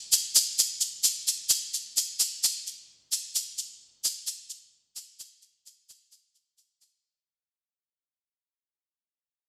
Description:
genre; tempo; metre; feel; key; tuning
bossa nova; 130 BPM; 4/4; straight; none; none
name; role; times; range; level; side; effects
tube shaker; percussion; 0.1-7.0 s; none; -26 LUFS; equal; none
room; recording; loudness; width
moderate recital hall reverb, RT60 1.3 s; recorded in a church or concert hall; -27 LUFS; mono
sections
0.0-7.0 A section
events
fade-out 0.0-7.0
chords
none

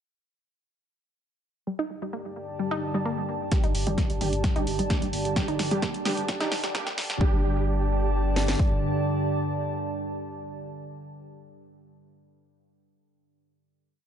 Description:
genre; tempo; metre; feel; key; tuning
driving peak-time techno; 130 BPM; 4/4; straight; unclear; A4 = 438 Hz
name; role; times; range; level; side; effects
wide unison pluck; riff; 1.7-7.4 s; G3 to Eb4; -32 LUFS; equal; sidechain pumping, analog delay
deep dark ambient pad; drone; 2.4-10.7 s; G2 to D3; -32 LUFS; equal; chorus, built-in reverb, sidechain pumping
warbly tape-like pad; texture; 2.1-10.9 s; G4 to A5; -33 LUFS; right 2 dB; chorus, built-in reverb, sidechain pumping
rave stab; stabs; 3.5-10.7 s; G3 to G4; -33 LUFS; right 2 dB; chorus, built-in reverb, sidechain pumping, tape echo
punchy analog drum machine; drums; 3.5-7.2 s; hi-hat, snare drum, toms; -31 LUFS; equal; none
techno drum kit; drums; 3.5-8.7 s; kick drum, snare drum; -25 LUFS; equal; none
saturated sub bass; bass; 3.6-8.6 s; G1; -29 LUFS; equal; tube saturation, sidechain pumping, low-pass filter
room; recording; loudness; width
light reverb; echo-heavy mix, high-pass filter, nothing above 10.5 kHz; -24 LUFS; side -9 dB against mid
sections
1.7-3.5 intro; 3.5-7.2 build; 7.2-10.9 final chord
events
build-up 3.5-7.2; drum fill 3.5-7.2; filter sweep on synth arpeggio sound 3.5-7.2; filter sweep on synth stab 3.5-7.2; filter sweep 3.5-7.2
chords
1.7 G5

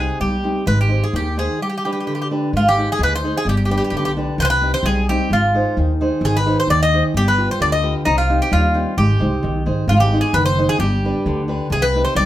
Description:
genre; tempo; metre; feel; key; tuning
greek folk, Greek bouzouki band; 130 BPM; 2/4; straight; unclear; A4 = 440 Hz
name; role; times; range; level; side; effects
Greek bouzouki; melody; 0.0-12.3 s; Eb4 to Eb5; -19 LUFS; equal; none
fingerpicked steel-string acoustic guitar; accompaniment; 0.0-12.3 s; C3 to C5; -21 LUFS; equal; none
upright bass; bass; 0.0-12.3 s; F#1 to Eb2; -20 LUFS; equal; none
room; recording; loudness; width
moderate studio reverb, RT60 0.6 s; band playing live in one room; -15 LUFS; side -13 dB against mid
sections
0.0-2.5 A section; 2.5-9.9 B section; 9.9-12.3 B section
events
speeding up 0.0-12.3; break 1.6-2.5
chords
0.0 Cm; 0.7 Ab; 1.6 G; 2.5 Ab; 3.5 G; 4.4 Cm; 5.3 Ab; 7.1 G7; 8.1 Cm; 9.0 Ab; 10.8 G; 11.7 Cm

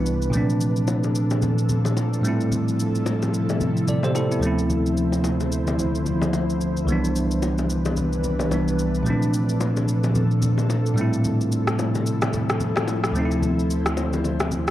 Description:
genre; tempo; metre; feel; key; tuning
amapiano; 110 BPM; 4/4; swing 58% on 16ths; unclear; A4 = 440 Hz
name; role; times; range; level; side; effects
bell-like tine electric piano; accompaniment; 0.0-14.7 s; C2 to D5; -22 LUFS; right 1 dB; none
ethereal airy pad; sustained chords; 0.0-14.7 s; Bb2 to C5; -25 LUFS; equal; ensemble chorus, built-in reverb
electronic shaker and rim click; drums; 0.1-14.7 s; none; -30 LUFS; equal; none
congas and bongos; percussion; 0.3-14.7 s; none; -30 LUFS; left 3 dB; none
room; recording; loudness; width
light reverb, digital ambience; worn, warbling old tape, cassette tape, warbly pitch drift; -20 LUFS; side -13 dB against mid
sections
0.0-14.7 A section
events
none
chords
0.3 Bbmaj7; 2.2 Fmaj7/A; 4.4 Dm9; 6.9 Cmaj9; 9.1 Bbmaj7; 11.0 Fmaj7/A; 13.2 Dm9

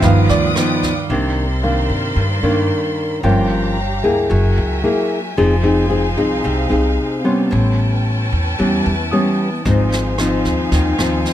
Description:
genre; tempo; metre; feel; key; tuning
bossa nova; 112 BPM; 4/4; straight; C minor; A4 = 436 Hz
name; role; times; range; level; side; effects
nylon-string guitar; accompaniment; 0.0-11.3 s; G2 to Ab4; -17 LUFS; left 1 dB; none
warm concert grand piano; accompaniment; 0.0-11.3 s; Eb3 to Eb6; -23 LUFS; right 5 dB; none
rich studio string section; sustained chords; 0.0-11.3 s; C#4 to Eb6; -24 LUFS; equal; none
upright bass; bass; 0.0-11.2 s; F1 to G2; -19 LUFS; equal; none
jazz brush drum kit; drums; 0.0-0.9, 9.7-11.3 s; kick drum, rim click, snare drum; -23 LUFS; equal; none
room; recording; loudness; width
little or no reverb; close, detailed microphones; -14 LUFS; side -12 dB against mid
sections
0.0-1.1 A section; 1.1-11.3 B section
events
grand piano solo 0.0-1.1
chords
0.0 G7b13; 1.1 Cm9; 3.2 Gm7b5; 4.3 F#9; 5.4 Fm7; 7.5 A9; 9.7 Ab6

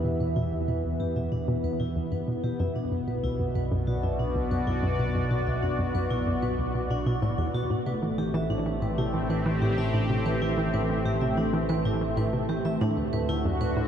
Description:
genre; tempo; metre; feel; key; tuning
ambient, sequencer-driven space music; 94 BPM; 4/4; straight; unclear; A4 = 439 Hz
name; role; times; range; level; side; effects
sweeping resonant pad; sustained chords; 0.0-13.9 s; A2 to E5; -29 LUFS; equal; chorus
hollow square pluck; riff; 0.0-13.8 s; D2 to E3; -29 LUFS; equal; chorus, analog delay
fat analog bass; bass; 0.0-13.9 s; A1 to E2; -33 LUFS; equal; none
vibraphone with hard mallets; arpeggios; 0.2-13.7 s; D4 to E5; -36 LUFS; right 2 dB; auto-pan, analog delay
room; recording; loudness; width
moderate huge ambient reverb, RT60 8.0 s; dark, warm production; -25 LUFS; side -9 dB against mid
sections
0.0-13.9 A section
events
fade-in on vibraphone 0.0-13.9; filter sweep on synth arpeggio sound 0.0-13.9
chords
0.0 Em; 2.6 Bm; 7.7 Am7; 12.8 D

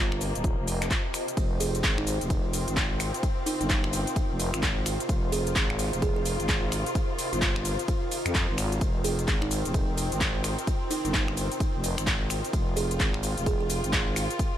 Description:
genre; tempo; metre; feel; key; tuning
bass house; 129 BPM; 4/4; swing 62% on 16ths; F minor; A4 = 440 Hz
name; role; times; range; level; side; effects
kalimba; melody; 0.0-13.7 s; Eb4 to Ab4; -35 LUFS; right 5 dB; dub echo
muted chamber string section; sustained chords; 0.0-14.6 s; C3 to F4; -36 LUFS; left 3 dB; sidechain pumping
growling FM bass; bass; 0.0-14.3 s; Eb1 to F2; -30 LUFS; equal; tube saturation, sidechain pumping
ethereal airy pad; texture; 0.0-14.6 s; F4 to G5; -36 LUFS; equal; ensemble chorus, built-in reverb, sidechain pumping
house drum kit; drums; 0.1-14.5 s; finger snaps, handclaps, hi-hat, ride cymbal, shaker; -31 LUFS; equal; none
electronic kick drum; drums; 0.4-14.5 s; none; -28 LUFS; equal; none
room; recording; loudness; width
little or no reverb; none; -25 LUFS; side -11 dB against mid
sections
0.0-14.6 A section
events
none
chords
0.0 F5

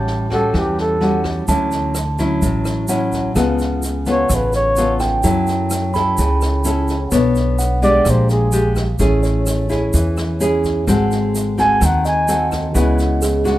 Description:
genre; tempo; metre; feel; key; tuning
bossa nova; 128 BPM; 4/4; straight; C# minor; A4 = 440 Hz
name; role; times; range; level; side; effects
nylon-string guitar; accompaniment; 0.0-13.6 s; A2 to C#5; -19 LUFS; left 1 dB; none
tine electric piano; accompaniment; 0.0-13.6 s; G#4 to B5; -24 LUFS; right 3 dB; medium tremolo
upright bass; bass; 0.0-13.6 s; G#1 to F#2; -20 LUFS; equal; none
open jazz drum kit; drums; 0.1-13.5 s; kick drum, rim click, snare drum; -28 LUFS; equal; none
mellow flugelhorn; melody; 0.3-1.2, 4.1-5.0, 7.8-8.7, 11.6-12.5 s; G4 to G#5; -18 LUFS; right 1 dB; none
egg shaker; percussion; 1.5-13.6 s; none; -29 LUFS; right 3 dB; none
room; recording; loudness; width
light reverb, studio ambience; rough home demo mix; -14 LUFS; side -15 dB against mid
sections
0.0-13.6 A section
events
flugelhorn solo 0.0-13.6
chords
0.0 A6; 1.5 Dmaj9; 3.4 C#aug7; 5.2 F#m7; 7.1 Bm9; 8.1 A#6; 9.0 Amaj7; 10.9 G#7b9; 12.7 C#m11

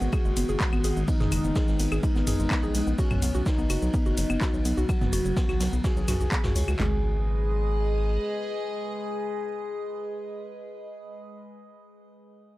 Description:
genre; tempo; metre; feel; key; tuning
melodic techno; 126 BPM; 4/4; straight; G# minor; A4 = 440 Hz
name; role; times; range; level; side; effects
expressive synth lead; melody; 0.0-11.2 s; C#4 to G#4; -32 LUFS; left 1 dB; lush chorus, sidechain pumping, tape echo
evolving wavetable pad; sustained chords; 0.0-11.2 s; C#3 to D#5; -35 LUFS; equal; phaser, built-in reverb, sidechain pumping
woody wave-folded pluck; arpeggios; 0.0-7.0 s; F#3 to C#5; -32 LUFS; equal; chorus, sidechain pumping, tape echo
round analog bass; bass; 0.0-8.2 s; F#1 to C#2; -27 LUFS; equal; sidechain pumping
punchy analog drum machine; drums; 0.0-6.8 s; claves, handclaps, hi-hat, shaker, toms; -32 LUFS; equal; overdrive
jazz brush drum kit; drums; 0.1-6.7 s; ride cymbal, snare drum; -43 LUFS; equal; high-pass filter on cymbals, high-pass filter on snare, high-pass filter on room
punchy analog drum machine; drums; 0.1-6.9 s; handclaps, kick drum, snare drum, toms; -27 LUFS; equal; overdrive
room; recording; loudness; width
little or no reverb; dry, gritty hardware recording; -24 LUFS; side -17 dB against mid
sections
0.0-6.8 A section; 6.8-10.6 B section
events
drop 0.0-6.8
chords
0.0 G#m; 3.0 Bsus2; 6.8 G#m

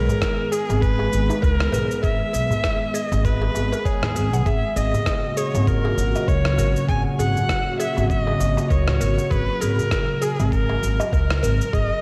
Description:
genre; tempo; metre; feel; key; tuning
organic downtempo; 99 BPM; 4/4; swing 58% on 16ths; unclear; A4 = 440 Hz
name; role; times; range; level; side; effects
rich kamancheh; melody; 0.0-12.0 s; G#4 to G#5; -28 LUFS; equal; tape echo
warbly tape-like pad; sustained chords; 0.0-12.0 s; A#2 to G#4; -29 LUFS; equal; chorus, built-in reverb, sidechain pumping
mallet-like synth pluck; arpeggios; 0.0-12.0 s; D#4 to F#5; -33 LUFS; equal; chorus, phaser, tape echo
upright bass; bass; 0.0-11.9 s; G#1 to D#2; -24 LUFS; equal; none
electronic shaker and rim click; drums; 0.1-11.9 s; none; -34 LUFS; equal; none
darbuka; percussion; 0.1-11.6 s; none; -34 LUFS; equal; none
electronic kick drum; drums; 0.2-11.9 s; none; -26 LUFS; equal; none
room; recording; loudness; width
moderate lush hall reverb, RT60 2.1 s; dreamy mix soaked in reverb; -21 LUFS; mono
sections
0.0-12.0 A section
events
none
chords
0.0 G#m; 4.5 F#/G#

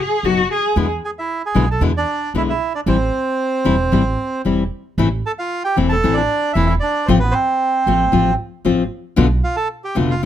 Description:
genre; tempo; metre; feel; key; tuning
tango; 114 BPM; 4/4; rubato; A minor; A4 = 440 Hz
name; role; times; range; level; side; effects
warm cello; second line; 0.0-0.9 s; F#4 to G#4; -18 LUFS; left 1 dB; none
nylon-string guitar; accompaniment; 0.2-10.3 s; B2 to F#4; -18 LUFS; left 5 dB; none
upright bass; bass; 0.2-10.2 s; E1 to E2; -19 LUFS; right 2 dB; none
bandoneon; melody; 1.0-10.2 s; B3 to A5; -19 LUFS; right 3 dB; none
room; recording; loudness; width
little or no reverb; close, detailed microphones; -15 LUFS; side -10 dB against mid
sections
0.0-5.0 A section; 5.0-10.3 A section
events
none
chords
0.0 B; 0.8 E7; 2.9 Am7; 5.0 Am; 7.1 F/A; 9.2 Bm7b5

